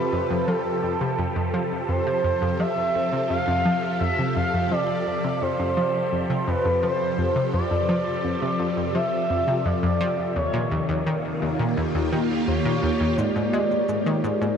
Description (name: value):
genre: ambient, sequencer-driven space music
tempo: 85 BPM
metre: 4/4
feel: straight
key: F major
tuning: A4 = 445 Hz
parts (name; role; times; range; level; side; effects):
- expressive portamento lead; melody; 0.0-14.6 s; A4 to F5; -26 LUFS; right 1 dB; wide subtle chorus, cassette tape, ping-pong delay
- phased string machine; sustained chords; 0.0-14.6 s; C3 to C5; -26 LUFS; equal; ensemble chorus, phaser
- analog pluck; riff; 0.0-14.6 s; Eb2 to Ab3; -26 LUFS; equal; chorus, ping-pong delay
- wind-like tuned noise texture; texture; 0.0-13.2 s; A4; -38 LUFS; right 1 dB; none
- shaker and woodblock; percussion; 13.2-14.6 s; none; -52 LUFS; right 3 dB; ping-pong delay
room: wet huge ambient reverb, RT60 7.5 s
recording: none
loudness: -21 LUFS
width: side -7 dB against mid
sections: 0.0-13.2 A section; 13.2-14.6 B section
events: filter sweep on synth arpeggio sound 0.0-13.2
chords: 0.0 F; 10.4 Eb7; 13.2 Abmaj7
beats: 0.48 1.18 | 1.89 2.60 3.30 4.01 | 4.71 5.42 6.12 6.83 | 7.54 8.24 8.95 9.65 | 10.36 11.07 11.77 12.48 | 13.18 13.89